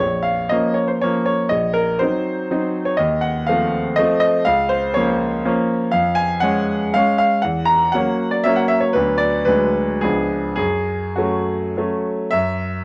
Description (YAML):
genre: classical, romantic triple-time dance for piano with dotted rhythms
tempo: 95-127 BPM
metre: 3/4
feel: rubato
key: Bb minor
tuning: A4 = 439 Hz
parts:
  - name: bright grand piano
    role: solo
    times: 0.0-12.8 s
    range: Bb1 to A#5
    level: -19 LUFS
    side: equal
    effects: none
room: moderate large studio reverb, RT60 0.8 s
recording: worn, warbling old tape, cassette tape, warbly pitch drift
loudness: -19 LUFS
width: mono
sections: 0.0-12.3 A section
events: none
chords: 0.0 Bbm; 1.5 Cdim/Bb; 3.0 F7/Eb; 4.5 Bbm/Db; 5.9 C#/E#; 7.4 F#7/E; 8.9 Bm/D; 9.5 G#m7b5/D; 10.0 C#7b9; 10.6 F#m; 12.3 N.C.